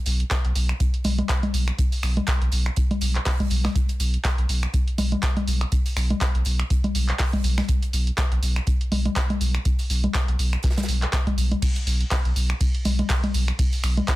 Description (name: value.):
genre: acid house.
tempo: 122 BPM.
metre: 4/4.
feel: swing 56% on 16ths.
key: unclear.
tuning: A4 = 439 Hz.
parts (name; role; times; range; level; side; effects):
warm sub bass; bass; 0.1-14.0 s; B1; -22 LUFS; equal; sidechain pumping.
punchy analog drum machine; drums; 0.1-14.2 s; congas, crash cymbal, finger snaps, handclaps, hi-hat, ride cymbal; -26 LUFS; left 1 dB; soft clipping on snare.
tight metal drum kit; drums; 0.1-14.2 s; hi-hat, snare drum; -39 LUFS; right 3 dB; sidechain pumping on hats, high-pass filter on hats, high-pass filter on snare, high-pass filter on room.
electronic kick drum; drums; 0.3-14.2 s; none; -24 LUFS; equal; none.
room: little or no reverb.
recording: dense, heavily limited modern master.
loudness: -20 LUFS.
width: side -17 dB against mid.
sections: 0.0-14.2 A section.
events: none.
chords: none.